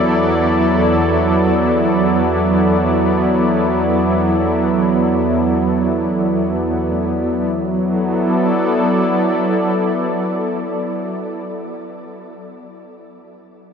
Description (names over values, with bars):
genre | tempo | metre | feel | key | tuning
ambient | free time | none | none | unclear | A4 = 440 Hz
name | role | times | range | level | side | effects
warm analog pad | sustained chords | 0.0-11.5 s | E2 to D5 | -15 LUFS | equal | chorus, tremolo, shimmer reverb
soft round pluck | arpeggios | 0.0-11.2 s | none | barely audible | none | none
room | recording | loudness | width
wet huge ambient reverb, RT60 7.6 s | dark, warm production | -14 LUFS | side -6 dB against mid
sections
0.0-7.5 A section; 7.5-10.8 B section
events
none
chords
0.0 E9sus4; 7.5 E5